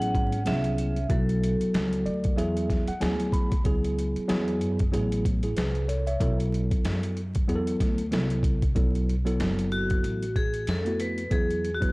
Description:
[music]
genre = hip hop, jazz-hop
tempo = 94 BPM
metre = 4/4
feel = swing 58% on 16ths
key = B dorian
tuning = A4 = 445 Hz
[part]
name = vibraphone with medium hard mallets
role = melody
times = 0.0-2.3, 9.7-11.9 s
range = F#4 to F#5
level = -31 LUFS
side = equal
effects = analog delay
[part]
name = mellow electric guitar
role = second line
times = 0.0-2.3 s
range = F#3 to C#4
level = -31 LUFS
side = left 1 dB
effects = none
[part]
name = mellow tine electric piano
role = accompaniment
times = 0.0-11.9 s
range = F#3 to B5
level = -29 LUFS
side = equal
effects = medium stereo tremolo
[part]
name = upright bass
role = bass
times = 0.0-11.9 s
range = F#1 to F#2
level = -29 LUFS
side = equal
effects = none
[part]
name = boom bap sampler-style drum kit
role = drums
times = 0.0-11.9 s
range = hi-hat, kick drum, snare drum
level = -28 LUFS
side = equal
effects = none
[sound]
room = little or no reverb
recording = dry, gritty hardware recording, vinyl crackle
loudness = -24 LUFS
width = side -24 dB against mid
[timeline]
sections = 0.0-8.8 A section; 8.8-11.9 B section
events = tine electric piano fill 1.7-3.7; vibraphone solo 8.8-11.9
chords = 0.0 Amaj9 (rootless); 1.1 Bm11; 2.4 E9; 3.7 C#m7; 4.3 E; 4.9 Asus2; 6.2 B7sus4; 7.5 E9sus4; 8.8 B5; 11.3 Eadd9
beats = 0.46 | 1.10 1.74 2.38 3.01 | 3.65 4.29 4.93 5.57 | 6.21 6.84 7.48 8.12 | 8.76 9.40 10.04 10.67 | 11.31

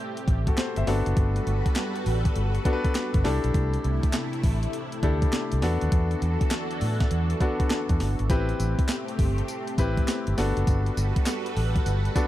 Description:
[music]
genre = R&B, new jack swing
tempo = 101 BPM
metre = 4/4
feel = swing 65% on 16ths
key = A dorian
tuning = A4 = 441 Hz
[part]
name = clear concert grand piano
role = accompaniment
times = 0.0-12.3 s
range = B3 to E5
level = -30 LUFS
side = left 3 dB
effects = none
[part]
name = lush unison pad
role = sustained chords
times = 0.0-12.3 s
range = C3 to B4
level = -32 LUFS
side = equal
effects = chorus, phaser
[part]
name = crisp 8-bit digital drum machine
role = drums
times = 0.2-12.3 s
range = handclaps, hi-hat, kick drum, snare drum, tambourine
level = -26 LUFS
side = equal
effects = overdrive
[part]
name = vintage muted fingered electric bass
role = bass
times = 0.3-12.1 s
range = F#1 to A2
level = -25 LUFS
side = equal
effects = none
[sound]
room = little or no reverb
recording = dark, warm production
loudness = -23 LUFS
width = side -14 dB against mid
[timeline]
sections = 0.0-12.3 A section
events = none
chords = 0.0 Am9; 0.9 Gmaj9; 3.2 C6; 5.6 E9sus4; 8.3 Am9; 10.4 Gmaj9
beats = 0.57 | 1.17 1.76 2.36 2.95 | 3.54 4.14 4.73 5.33 | 5.92 6.51 7.11 7.70 | 8.30 8.89 9.49 10.08 | 10.67 11.27 11.86

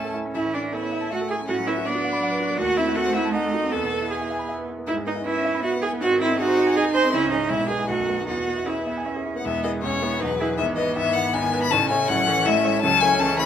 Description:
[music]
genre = quick classical-period movement for piano quartet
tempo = 159 BPM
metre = 3/4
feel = rubato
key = A major, E major from 4.9 s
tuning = A4 = 436 Hz
[part]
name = rich violin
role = melody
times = 0.0-13.5 s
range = B4 to B#5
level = -25 LUFS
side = left 7 dB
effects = none
[part]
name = clear cello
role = second line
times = 0.0-13.5 s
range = C#3 to D#4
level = -29 LUFS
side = right 6 dB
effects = none
[part]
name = bright grand piano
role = accompaniment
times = 0.0-13.5 s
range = E1 to B5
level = -27 LUFS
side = equal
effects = none
[part]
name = clear viola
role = accompaniment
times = 0.0-13.5 s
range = B3 to B#4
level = -24 LUFS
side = right 3 dB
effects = none
[sound]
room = moderate large studio reverb, RT60 1.1 s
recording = none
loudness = -20 LUFS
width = side -9 dB against mid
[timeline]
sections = 0.3-9.5 A section; 9.5-13.5 B section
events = none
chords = 0.3 A; 1.5 Bm/A; 2.6 D#dim7; 3.7 E; 4.9 E/G#; 6.0 G#7; 7.1 C#m; 7.5 E/B; 7.9 B7; 8.3 E; 10.6 E/G#; 11.7 A; 12.8 A/C#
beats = | 0.35 0.73 1.11 | 1.48 1.85 2.21 | 2.58 2.95 3.33 | 3.72 4.11 4.49 | 4.88 5.26 5.63 | 6.01 6.39 6.76 | 7.13 7.50 7.88 | 8.27 8.67 9.06 | 9.45 9.83 10.21 | 10.59 10.96 11.34 | 11.71 12.09 12.46 | 12.84 13.21

